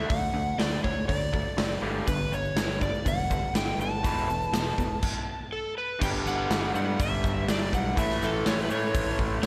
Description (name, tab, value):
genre	classic rock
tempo	122 BPM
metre	4/4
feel	straight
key	unclear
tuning	A4 = 439 Hz
part	overdriven slide guitar	melody	0.0-9.5 s	A4 to A5	-34 LUFS	equal	tape echo
part	mellow tonewheel organ	sustained chords	0.0-9.5 s	F#3 to C#5	-44 LUFS	equal	none
part	raw garage guitar	riff	0.0-9.5 s	E2 to A3	-34 LUFS	equal	overdrive, slapback echo
part	fingered electric bass	bass	0.0-9.5 s	E1 to A2	-36 LUFS	equal	none
part	big rock drum kit	drums	0.1-9.5 s	crash cymbal, hi-hat, kick drum, snare drum	-32 LUFS	equal	none
part	egg shaker	percussion	2.1-9.5 s	none	-52 LUFS	equal	none
room	moderate lush hall reverb, RT60 2.0 s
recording	big arena sound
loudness	-28 LUFS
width	mono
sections	0.0-6.0 A section; 6.0-9.5 B section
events	stop 5.0-6.0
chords	0.0 D; 1.8 G; 4.0 Esus4; 6.0 G; 8.0 A